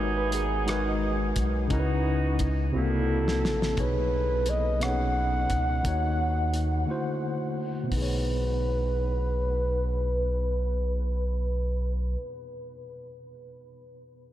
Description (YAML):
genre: slow six-eight R&B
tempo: 58 BPM (dotted quarters)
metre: 6/8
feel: straight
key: B major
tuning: A4 = 440 Hz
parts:
  - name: tine electric piano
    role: accompaniment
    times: 0.0-14.3 s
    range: B2 to C#5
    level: -31 LUFS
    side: left 1 dB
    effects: overdrive, medium stereo tremolo, low-pass filter
  - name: warm horn section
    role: stabs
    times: 0.0-3.4 s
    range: G3 to G#4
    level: -35 LUFS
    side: right 2 dB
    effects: diffuse ambient delay
  - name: round analog bass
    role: bass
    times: 0.0-12.2 s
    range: G#1 to D#2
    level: -28 LUFS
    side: equal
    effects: none
  - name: mellow electric guitar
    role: second line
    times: 0.2-1.7 s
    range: D#4 to B4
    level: -38 LUFS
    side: right 4 dB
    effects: none
  - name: cloth-damped thuddy drum kit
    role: drums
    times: 0.3-8.1 s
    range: hi-hat, kick drum, rim click, snare drum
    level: -34 LUFS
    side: equal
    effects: none
  - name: breathy flugelhorn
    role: melody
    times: 2.8-12.2 s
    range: A4 to F#5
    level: -32 LUFS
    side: equal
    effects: low-pass filter, diffuse ambient delay
room: moderate huge ambient reverb, RT60 8.0 s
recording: dreamy mix soaked in reverb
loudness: -25 LUFS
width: side -13 dB against mid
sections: 0.0-3.8 A section; 3.8-7.9 B section; 7.9-12.1 C section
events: drum fill 2.7-3.8; break 6.9-7.9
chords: 0.0 G#m9; 1.7 C#m9; 2.7 C7#11; 3.8 B6; 5.8 D#m7; 6.9 D9; 7.9 B6